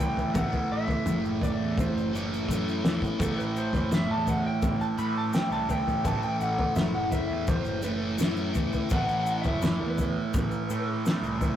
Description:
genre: psychedelic rock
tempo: 84 BPM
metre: 4/4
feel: straight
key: A dorian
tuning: A4 = 442 Hz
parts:
  - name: electric slide guitar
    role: melody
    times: 0.0-10.9 s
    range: A4 to B5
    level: -32 LUFS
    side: equal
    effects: slapback echo
  - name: fuzz guitar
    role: riff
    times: 0.0-11.6 s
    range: A2 to A3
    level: -29 LUFS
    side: right 1 dB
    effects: distortion, phaser
  - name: fuzz picked electric bass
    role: bass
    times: 0.0-11.6 s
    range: F#1 to A2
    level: -34 LUFS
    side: equal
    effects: overdrive
  - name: egg shaker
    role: percussion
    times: 0.0-11.6 s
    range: none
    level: -47 LUFS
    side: left 5 dB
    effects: none
  - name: cloth-damped thuddy drum kit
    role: drums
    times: 0.2-11.6 s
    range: kick drum, snare drum, toms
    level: -28 LUFS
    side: left 1 dB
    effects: none
room: moderate small room reverb, RT60 0.5 s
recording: rough rehearsal-room recording, warm saturation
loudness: -25 LUFS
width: side -10 dB against mid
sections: 0.0-11.6 A section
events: electric slide guitar solo 0.0-11.6; drum fill 2.5-3.2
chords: 0.0 A5

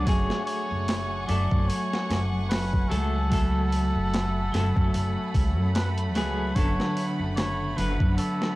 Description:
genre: trip hop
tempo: 74 BPM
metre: 4/4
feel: swing 56% on 16ths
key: F# minor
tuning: A4 = 440 Hz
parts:
  - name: trumpet with cup mute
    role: melody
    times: 0.0-8.6 s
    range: A4 to D5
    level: -32 LUFS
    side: equal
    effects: cassette tape, tape echo
  - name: clean electric guitar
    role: accompaniment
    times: 0.0-8.6 s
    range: D3 to B4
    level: -32 LUFS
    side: equal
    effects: tremolo, cassette tape
  - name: rich studio violin section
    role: sustained chords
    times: 0.0-8.6 s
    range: A3 to C#6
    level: -36 LUFS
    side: equal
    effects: cassette tape
  - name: concert harp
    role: arpeggios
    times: 0.0-8.6 s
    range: F#3 to D4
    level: -32 LUFS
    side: equal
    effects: cassette tape
  - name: upright bass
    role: bass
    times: 0.0-8.2 s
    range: F#1 to F#2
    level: -27 LUFS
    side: equal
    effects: none
  - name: boom bap sampler-style drum kit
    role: drums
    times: 0.1-8.6 s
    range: hi-hat, kick drum, snare drum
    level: -27 LUFS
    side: equal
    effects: overdrive
room: studio reverb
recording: home recording on cassette, vinyl crackle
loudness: -23 LUFS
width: side -19 dB against mid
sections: 0.0-8.6 A section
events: none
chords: 0.1 F#madd9; 6.6 Bm7/F#

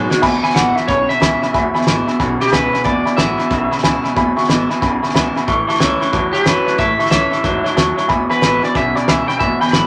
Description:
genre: rockabilly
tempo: 183 BPM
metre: 4/4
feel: swing 63% on 8ths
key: E major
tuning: A4 = 440 Hz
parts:
  - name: picked steel-string acoustic guitar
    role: accompaniment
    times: 0.0-9.9 s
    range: E2 to F#4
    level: -26 LUFS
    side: equal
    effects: none
  - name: warm upright piano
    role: accompaniment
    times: 0.0-9.9 s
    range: E5 to C#6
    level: -22 LUFS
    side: equal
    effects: none
  - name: electric guitar through a small old amp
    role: riff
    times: 0.0-9.9 s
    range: E2 to G#3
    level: -22 LUFS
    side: equal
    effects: none
  - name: upright bass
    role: bass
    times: 0.0-9.9 s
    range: E1 to F#2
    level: -29 LUFS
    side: equal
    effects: none
  - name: cloth-damped thuddy drum kit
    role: drums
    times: 0.1-9.8 s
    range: crash cymbal, hi-hat, kick drum, snare drum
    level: -22 LUFS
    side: equal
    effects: none
  - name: electric guitar at the edge of break-up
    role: melody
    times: 0.4-4.1, 6.3-9.9 s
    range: G4 to B5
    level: -20 LUFS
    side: equal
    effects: none
room: wet small room reverb, RT60 0.5 s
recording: none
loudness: -15 LUFS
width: mono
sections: 0.2-9.9 A section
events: drum fill 0.0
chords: 0.2 E; 5.5 A; 8.1 E

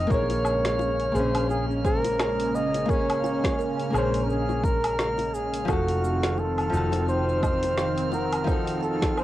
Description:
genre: sunset chillout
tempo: 86 BPM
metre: 4/4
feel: swing 57% on 16ths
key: Bb minor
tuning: A4 = 439 Hz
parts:
  - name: mellow flugelhorn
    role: melody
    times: 0.0-9.2 s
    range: Gb4 to Eb5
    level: -28 LUFS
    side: equal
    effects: cassette tape, plate reverb
  - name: flamenco guitar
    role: accompaniment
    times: 0.0-9.2 s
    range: F3 to A5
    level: -30 LUFS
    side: left 1 dB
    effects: auto-pan, tape echo, plate reverb
  - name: lush unison pad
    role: sustained chords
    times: 0.0-9.2 s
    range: Db3 to Eb4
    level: -31 LUFS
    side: equal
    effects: chorus, phaser
  - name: woody fretless electric bass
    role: bass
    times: 0.0-9.1 s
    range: F1 to Bb1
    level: -30 LUFS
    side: equal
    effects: none
  - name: drifting glass-harmonics texture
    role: texture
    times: 0.0-9.2 s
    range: F6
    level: -42 LUFS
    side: right 5 dB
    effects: chorus, built-in reverb, plate reverb
  - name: buzzing kalimba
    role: arpeggios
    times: 0.1-9.2 s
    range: Ab4 to A5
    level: -35 LUFS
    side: right 8 dB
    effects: tape echo, plate reverb
  - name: deep house drum kit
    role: drums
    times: 0.1-9.2 s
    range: cabasa, hi-hat, snare drum, woodblock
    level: -31 LUFS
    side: equal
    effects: cassette tape
  - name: electronic kick drum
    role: drums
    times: 0.1-9.1 s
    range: none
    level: -26 LUFS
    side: equal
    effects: cassette tape
  - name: bongos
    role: percussion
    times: 0.3-9.0 s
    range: none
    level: -37 LUFS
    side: left 10 dB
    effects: none
room: light reverb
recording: home recording on cassette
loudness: -22 LUFS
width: side -14 dB against mid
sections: 0.0-9.2 A section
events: none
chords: 0.1 Bbm9; 5.7 F7b9

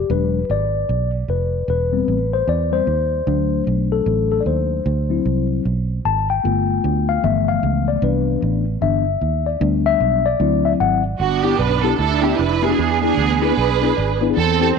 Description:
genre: uptempo gospel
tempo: 151 BPM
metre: 4/4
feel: swing 61% on 8ths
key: G major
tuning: A4 = 440 Hz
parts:
  - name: mellow tine electric piano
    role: accompaniment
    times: 0.0-14.8 s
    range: G2 to A5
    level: -19 LUFS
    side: left 8 dB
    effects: medium stereo tremolo
  - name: fingered electric bass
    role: bass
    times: 0.0-14.7 s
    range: E1 to E2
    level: -21 LUFS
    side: right 3 dB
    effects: none
  - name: warm studio string section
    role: melody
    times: 11.2-14.8 s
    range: B3 to B4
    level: -18 LUFS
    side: right 11 dB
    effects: none
room: moderate echo chamber reverb, RT60 2.4 s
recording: 1960s-style stereo with parts hard left and right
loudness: -16 LUFS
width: side -6 dB against mid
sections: 0.0-11.2 A section; 11.2-14.8 B section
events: tine electric piano solo 0.0-11.2; tine electric piano fill 13.8-14.4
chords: 0.1 E7; 1.7 Am7/E; 3.3 D; 4.9 D7; 6.4 G7; 7.2 G13; 8.0 Cmaj7; 9.6 G/D; 10.4 D7; 11.2 G6; 12.8 E7

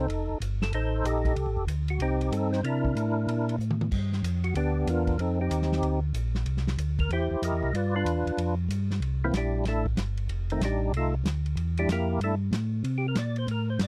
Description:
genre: soul jazz organ trio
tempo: 188 BPM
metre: 4/4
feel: swing 64% on 8ths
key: unclear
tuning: A4 = 440 Hz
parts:
  - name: percussive tonewheel organ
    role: melody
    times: 0.0-13.9 s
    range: Eb3 to Eb5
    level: -31 LUFS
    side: equal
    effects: slow rotary speaker, chorus vibrato
  - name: mellow tonewheel organ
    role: bass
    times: 0.0-13.9 s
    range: F1 to C3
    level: -30 LUFS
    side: equal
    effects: slow rotary speaker
  - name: warm soul drum kit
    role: drums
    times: 0.1-13.9 s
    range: crash cymbal, hi-hat, kick drum, ride cymbal, snare drum, toms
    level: -35 LUFS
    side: equal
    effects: none
room: little or no reverb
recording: none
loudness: -28 LUFS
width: mono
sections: 0.0-9.0 A section; 9.0-13.9 B section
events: drum fill 3.6-3.9; tonewheel organ solo 9.0-13.9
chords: 0.0 F13; 2.6 C13; 3.9 G6; 5.2 Fsus2; 6.5 C9; 7.7 G6; 9.0 C13; 10.3 F13; 11.6 C13

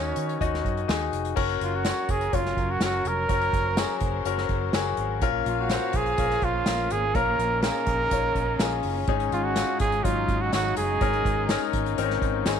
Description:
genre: piano-driven pop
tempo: 124 BPM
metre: 4/4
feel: straight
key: unclear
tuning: A4 = 440 Hz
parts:
  - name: warm trumpet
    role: melody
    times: 0.0-11.7 s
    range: Db4 to Bb4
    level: -27 LUFS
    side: right 4 dB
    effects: none
  - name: clear concert grand piano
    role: accompaniment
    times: 0.0-12.6 s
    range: Ab2 to Eb5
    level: -28 LUFS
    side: left 11 dB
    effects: none
  - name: vintage muted fingered electric bass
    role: bass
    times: 0.0-12.6 s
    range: F1 to Eb3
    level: -31 LUFS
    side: right 2 dB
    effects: none
  - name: unplugged drum kit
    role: drums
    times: 0.2-12.6 s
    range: crash cymbal, hi-hat, kick drum, snare drum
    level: -29 LUFS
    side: right 1 dB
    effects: none
  - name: tambourine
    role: percussion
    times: 0.9-12.6 s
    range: none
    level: -41 LUFS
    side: right 19 dB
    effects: none
  - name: clear studio string section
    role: sustained chords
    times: 1.4-12.6 s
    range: Gb3 to F5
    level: -36 LUFS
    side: right 1 dB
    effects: none
room: light reverb, small room reverb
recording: 1960s-style stereo with parts hard left and right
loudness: -23 LUFS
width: side -8 dB against mid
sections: 0.0-1.4 A section; 1.4-12.6 B section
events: none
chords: 0.0 Ebm7; 1.4 Gb; 5.2 Bbm

